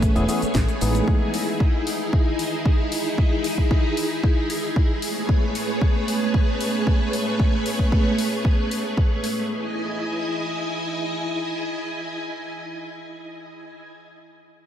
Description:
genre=nu-disco, nu disco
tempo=114 BPM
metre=4/4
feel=straight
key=E major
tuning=A4 = 441 Hz
part: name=barky tine electric piano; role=accompaniment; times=0.0-1.3 s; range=E3 to G#4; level=-28 LUFS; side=left 1 dB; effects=vintage 12-bit sampler grit, sidechain pumping, diffuse ambient delay
part: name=string machine, full ensemble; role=sustained chords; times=0.0-13.8 s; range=A3 to G#5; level=-24 LUFS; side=equal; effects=ensemble chorus, sidechain pumping
part: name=fingered electric bass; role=bass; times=0.0-1.0 s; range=E1 to A1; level=-23 LUFS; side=equal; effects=none
part: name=electronic kick drum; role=drums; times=0.0-9.1 s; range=none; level=-19 LUFS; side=equal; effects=overdrive
part: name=house drum kit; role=drums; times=0.0-9.3 s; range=hi-hat, shaker, snare drum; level=-32 LUFS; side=left 2 dB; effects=overdrive
room=moderate cathedral reverb, RT60 4.2 s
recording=dreamy mix soaked in reverb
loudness=-20 LUFS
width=side -10 dB against mid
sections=0.0-9.5 A section; 9.5-13.7 B section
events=none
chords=0.0 Amaj9; 1.1 Emaj7; 5.0 Amaj9; 9.5 Emaj7

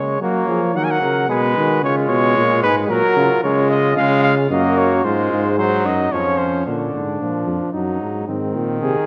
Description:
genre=classical, imitative canzona for brass ensemble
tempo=112 BPM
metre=3/4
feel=straight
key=F# major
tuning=A4 = 440 Hz
part: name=mellow cornet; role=melody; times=0.0-6.7 s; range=A#4 to G#5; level=-22 LUFS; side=equal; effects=none
part: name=mellow flugelhorn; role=second line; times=0.0-9.1 s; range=B#3 to C#5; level=-26 LUFS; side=equal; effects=none
part: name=brilliant trombone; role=accompaniment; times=0.0-9.1 s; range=D3 to A#3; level=-24 LUFS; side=equal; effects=none
part: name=mellow bass trombone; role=bass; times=0.0-8.9 s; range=E#2 to F#3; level=-23 LUFS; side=equal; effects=none
room=wet concert hall reverb, RT60 2.3 s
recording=none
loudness=-18 LUFS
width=mono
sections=0.2-6.7 A section; 6.7-9.1 B section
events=none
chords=0.2 F#; 1.3 G#m/B; 1.8 C#; 2.9 F#/A#; 3.4 C#; 4.5 D#m/F#; 5.0 G#; 6.1 C#/E#; 6.7 A#; 7.7 D#m/F#; 8.3 G#

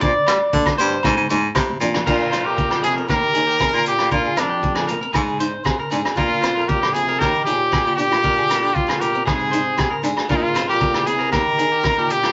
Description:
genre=highlife guitar band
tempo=117 BPM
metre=4/4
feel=straight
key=Bb mixolydian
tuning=A4 = 440 Hz
part: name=picked steel-string acoustic guitar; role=accompaniment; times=0.0-12.0 s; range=F3 to Eb4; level=-32 LUFS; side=equal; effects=none
part: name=electric guitar at the edge of break-up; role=arpeggios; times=0.0-12.3 s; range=G4 to D5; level=-26 LUFS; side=equal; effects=spring reverb
part: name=clear baritone saxophone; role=bass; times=0.0-12.3 s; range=Eb2 to G3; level=-26 LUFS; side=equal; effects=none
part: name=vintage drum kit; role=drums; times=0.0-12.3 s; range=crash cymbal, hi-hat, kick drum, rim click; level=-26 LUFS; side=equal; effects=none
part: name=congas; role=percussion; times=0.0-2.1, 10.3-12.2 s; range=none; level=-36 LUFS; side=equal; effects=none
part: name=shekere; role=percussion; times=0.0-12.2 s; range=none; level=-39 LUFS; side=equal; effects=none
part: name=agogo bells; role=percussion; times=0.3-12.3 s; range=none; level=-32 LUFS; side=equal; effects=none
part: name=brilliant trumpet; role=melody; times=2.1-12.3 s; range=D4 to Bb4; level=-22 LUFS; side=equal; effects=none
part: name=mellow trombone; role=second line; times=2.1-12.3 s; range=F2 to Eb3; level=-32 LUFS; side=equal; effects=none
room=moderate small room reverb, RT60 0.5 s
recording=nothing above 7.8 kHz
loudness=-19 LUFS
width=mono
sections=0.0-2.1 A section; 2.1-12.3 B section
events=clean electric guitar solo 0.0-2.1; drum fill 1.7-2.1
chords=0.0 Bb; 1.0 Ab; 2.1 Bb; 3.1 Eb; 4.1 Bb; 5.2 Ab; 6.2 Bb; 7.2 Eb; 8.2 Bb; 9.3 Ab; 10.3 Bb; 11.3 Eb

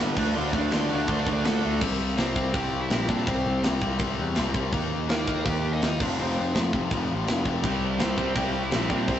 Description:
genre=punk rock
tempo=165 BPM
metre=4/4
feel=straight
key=unclear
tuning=A4 = 440 Hz
part: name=distorted electric guitar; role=riff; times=0.0-1.8, 7.6-9.2 s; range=G2 to D4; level=-30 LUFS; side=right 4 dB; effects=distortion
part: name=overdriven semi-hollow guitar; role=riff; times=0.0-9.2 s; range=F2 to Eb4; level=-29 LUFS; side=left 5 dB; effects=none
part: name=fuzz picked electric bass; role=bass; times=0.0-9.2 s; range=F1 to Bb2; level=-28 LUFS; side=right 1 dB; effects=overdrive
part: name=tight metal drum kit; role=drums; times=0.2-9.2 s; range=crash cymbal, kick drum, snare drum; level=-29 LUFS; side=right 1 dB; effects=none
part: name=high-gain lead guitar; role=melody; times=0.3-9.2 s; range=Bb3 to C6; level=-32 LUFS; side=right 1 dB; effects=distortion
room=light reverb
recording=rough rehearsal-room recording, nothing above 8.0 kHz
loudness=-23 LUFS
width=side -10 dB against mid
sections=0.0-1.8 A section; 1.8-9.2 B section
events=none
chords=0.2 D5; 1.8 C5; 4.7 Eb; 6.0 F5; 7.6 C

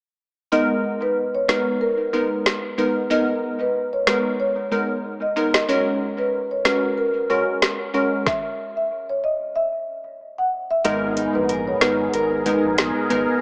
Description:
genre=dancehall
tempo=93 BPM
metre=4/4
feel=swing 56% on 16ths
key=G# minor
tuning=A4 = 440 Hz
part: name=marimba with soft mallets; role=melody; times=0.5-13.3 s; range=A#4 to F#5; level=-25 LUFS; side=equal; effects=analog delay
part: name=glassy wavetable pluck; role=accompaniment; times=0.5-13.4 s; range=G#3 to A#4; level=-26 LUFS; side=equal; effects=chorus, analog delay
part: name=afro-pop drum kit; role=drums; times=1.5-13.3 s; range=hi-hat, kick drum, snare drum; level=-24 LUFS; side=equal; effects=overdrive
part: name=warm analog pad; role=sustained chords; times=10.8-13.4 s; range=B3 to A#4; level=-29 LUFS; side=equal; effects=chorus, sidechain pumping
part: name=nylon-string guitar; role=arpeggios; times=10.8-13.4 s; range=G#2 to A#4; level=-29 LUFS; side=equal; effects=analog delay
part: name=warm sub bass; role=bass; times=10.8-13.3 s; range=G#1 to A#1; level=-37 LUFS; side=equal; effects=none
room=moderate spring reverb, RT60 2.4 s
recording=echo-heavy mix, small speaker sound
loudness=-22 LUFS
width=mono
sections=0.5-10.8 A section; 10.8-13.4 B section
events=stop 8.3-10.8; kick muted 10.8-13.4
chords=0.5 G#madd9; 5.7 F#add9; 8.3 N.C.; 10.8 G#madd9

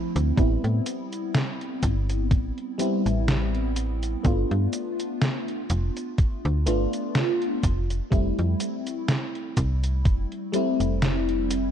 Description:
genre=vaporwave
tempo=62 BPM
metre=4/4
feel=swing 55% on 16ths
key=F lydian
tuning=A4 = 439 Hz
part: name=FM electric piano with soft pad layer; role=accompaniment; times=0.0-11.7 s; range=F3 to F4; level=-27 LUFS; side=left 1 dB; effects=phaser, wide subtle chorus, analog delay
part: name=slap-like FM bass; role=bass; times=0.2-11.7 s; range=F1 to A2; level=-25 LUFS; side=equal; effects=tube saturation
part: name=detuned 8-bit digital drum machine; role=drums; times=0.2-11.7 s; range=cabasa, hi-hat, snare drum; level=-27 LUFS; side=equal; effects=vintage 12-bit sampler grit
part: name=electronic kick drum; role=drums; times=0.4-10.3 s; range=none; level=-23 LUFS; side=equal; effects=vintage 12-bit sampler grit
room=little or no reverb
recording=dark, warm production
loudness=-23 LUFS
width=side -9 dB against mid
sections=0.0-11.7 A section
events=none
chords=0.4 Am7; 4.2 G7; 7.6 Fmaj7

